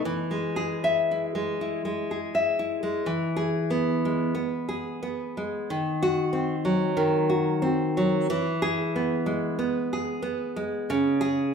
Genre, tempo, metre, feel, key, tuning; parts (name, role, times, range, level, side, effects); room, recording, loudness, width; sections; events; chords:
romantic piece for solo classical guitar; 76-96 BPM; 4/4; rubato; E major; A4 = 440 Hz
nylon-string guitar; solo; 0.1-11.5 s; C#3 to E5; -24 LUFS; equal
wet large studio reverb, RT60 1.1 s; band playing live in one room; -24 LUFS; side -6 dB against mid
0.0-3.1 A section; 3.1-11.5 B section
0.0 E; 5.7 D#m6; 8.3 E; 10.9 C#5